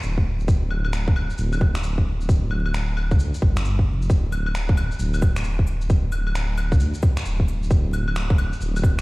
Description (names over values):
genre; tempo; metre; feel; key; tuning
future garage; 133 BPM; 4/4; swing 64% on 16ths; unclear; A4 = 440 Hz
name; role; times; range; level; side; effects
dark detuned saw bass; bass; 0.0-9.0 s; D1 to D2; -23 LUFS; equal; sidechain pumping
electronic shaker, claves, finger snaps and cabasa; drums; 0.0-9.0 s; none; -32 LUFS; left 1 dB; none
electronic kick drum; drums; 0.2-8.9 s; none; -19 LUFS; equal; none
room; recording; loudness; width
little or no reverb; played on a big sound system in a bare room, stone room reverb, vinyl crackle; -19 LUFS; side -23 dB against mid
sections
0.0-9.0 A section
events
none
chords
none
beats
0.04 | 0.49 0.94 1.39 1.84 | 2.29 2.74 3.19 3.65 | 4.10 4.55 5.00 5.45 | 5.90 6.35 6.80 7.25 | 7.71 8.16 8.61